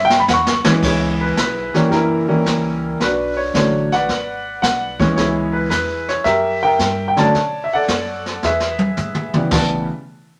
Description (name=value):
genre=jazz piano trio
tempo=110 BPM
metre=4/4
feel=swing 68% on 8ths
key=unclear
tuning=A4 = 440 Hz
part: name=warm concert grand piano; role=melody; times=0.0-9.9 s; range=C#3 to C#6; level=-19 LUFS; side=equal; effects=none
part: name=upright bass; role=bass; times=0.0-9.9 s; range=F#1 to G#2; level=-32 LUFS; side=equal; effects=none
part: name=jazz brush drum kit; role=drums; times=0.1-9.7 s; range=brushed snare drum, crash cymbal, hi-hat, kick drum, snare drum, toms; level=-24 LUFS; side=equal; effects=none
room=wet studio reverb, RT60 0.6 s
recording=none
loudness=-18 LUFS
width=mono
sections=0.8-9.5 A section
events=drum fill 0.0-0.8, 8.4-9.5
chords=0.0 A7; 0.8 C#m7; 1.9 F#7b9; 3.0 Bm9; 4.1 E9 (rootless); 5.2 C#m7; 6.3 F#7b9; 7.3 Bm9; 8.4 E; 9.5 A9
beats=0.29 | 0.83 1.37 1.91 2.45 | 3.00 3.54 4.08 4.62 | 5.17 5.71 6.25 6.80 | 7.34 7.89 8.43 8.97 | 9.52